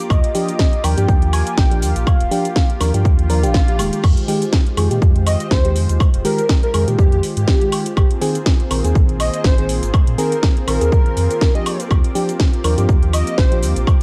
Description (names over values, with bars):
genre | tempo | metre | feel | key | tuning
deep house | 122 BPM | 4/4 | swing 56% on 16ths | Eb major | A4 = 440 Hz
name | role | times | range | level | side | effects
warm analog pad | sustained chords | 0.0-14.0 s | Ab3 to D6 | -30 LUFS | equal | lush chorus, sidechain pumping
warm velvety synth lead | melody | 0.1-3.5 s | Eb5 to Ab5 | -29 LUFS | equal | chorus, tape echo
sub bass with octave | bass | 0.1-14.0 s | Eb1 to Bb2 | -21 LUFS | equal | sidechain pumping
electronic kick drum | drums | 0.1-14.0 s | none | -17 LUFS | equal | small room ambience
house drum kit | drums | 0.1-14.0 s | crash cymbal, hi-hat, shaker, snare drum, woodblock | -27 LUFS | equal | small room ambience
mellow FM electric piano | stabs | 0.3-13.8 s | Eb3 to Bb4 | -25 LUFS | equal | chorus, vintage 12-bit sampler grit, sidechain pumping
swell | sound effects | 3.2-4.0 s | none | -31 LUFS | equal | none
airy dreamy lead | melody | 5.3-13.6 s | G4 to Eb5 | -25 LUFS | equal | chorus, tape echo
room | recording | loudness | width
digital ambience | dry, gritty hardware recording, cassette tape | -16 LUFS | mono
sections
0.0-14.0 A section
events
swell 3.2-4.0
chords
0.0 Ebmaj9; 4.0 Fm9; 8.0 Bb9sus4; 11.7 Ebmaj9